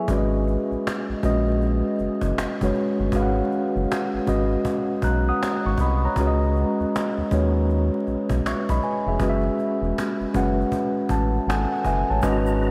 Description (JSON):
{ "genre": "R&B, neo-soul", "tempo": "79 BPM", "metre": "4/4", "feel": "swing 63% on 16ths", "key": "G# minor", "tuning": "A4 = 440 Hz", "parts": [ { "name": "mellow tine electric piano", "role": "accompaniment", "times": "0.0-12.7 s", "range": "F#3 to F#6", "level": "-25 LUFS", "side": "equal", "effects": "none" }, { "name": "round analog bass", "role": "bass", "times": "0.1-12.7 s", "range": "E1 to D#2", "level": "-26 LUFS", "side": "equal", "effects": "none" }, { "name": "cajon", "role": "drums", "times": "0.1-12.7 s", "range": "none", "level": "-34 LUFS", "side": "equal", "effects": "none" }, { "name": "tonewheel organ", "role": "sustained chords", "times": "12.2-12.7 s", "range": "G#3 to A#5", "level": "-34 LUFS", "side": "equal", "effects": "overdrive, chorus vibrato, fast rotary speaker" }, { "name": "egg shaker", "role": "percussion", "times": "12.2-12.6 s", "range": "none", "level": "-52 LUFS", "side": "equal", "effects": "none" } ], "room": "moderate huge ambient reverb, RT60 8.1 s", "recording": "dreamy mix soaked in reverb, vinyl crackle", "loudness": "-23 LUFS", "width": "mono", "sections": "0.0-12.2 A section", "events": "tine electric piano fill 10.7-12.2", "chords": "0.1 G#m9; 6.2 C#sus2; 9.2 F#m9" }